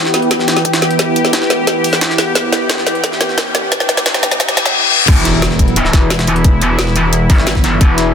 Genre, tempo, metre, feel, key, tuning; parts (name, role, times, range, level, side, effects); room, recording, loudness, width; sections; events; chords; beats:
dark technical drum and bass; 176 BPM; 4/4; straight; E minor; A4 = 437 Hz
sweeping resonant pad; sustained chords; 0.0-8.1 s; E3 to G4; -17 LUFS; equal; chorus, sidechain pumping
riser, reverse cymbal and impact; sound effects; 2.4-6.4 s; -19 LUFS; left 2 dB
warbly tape-like pad; texture; 0.0-4.7 s; E4 to G5; -20 LUFS; equal; chorus, built-in reverb, phaser, sidechain pumping
drum and bass drum kit; drums; 0.1-8.0 s; crash cymbal, hi-hat, snare drum; -16 LUFS; left 1 dB
jungle sampler-style drum kit; drums; 0.1-8.1 s; hi-hat, snare drum; -21 LUFS; equal; high-pass filter on hats, high-pass filter on snare
electronic kick drum; drums; 0.3-7.9 s; -12 LUFS; equal; high-pass filter on kick, high-pass filter on room
metallic wobble bass; bass; 5.1-8.1 s; E1 to G1; -15 LUFS; equal; chorus, overdrive
light reverb; dense, heavily limited modern master, high-pass filter; -10 LUFS; side -7 dB against mid
0.0-5.1 A section; 5.1-8.1 B section
build-up 0.0-5.1; drum fill 0.0-4.7; filter sweep 0.0-5.1; riser 2.4-4.7; reverse cymbal 4.4-5.1; drop 5.1-8.1; impact 5.1-6.4
0.0 Em
0.31 0.65 | 0.99 1.33 1.67 2.01 | 2.35 2.69 3.04 3.38 | 3.72 4.06 4.40 4.74 | 5.08 5.42 5.76 6.10 | 6.45 6.79 7.13 7.47 | 7.81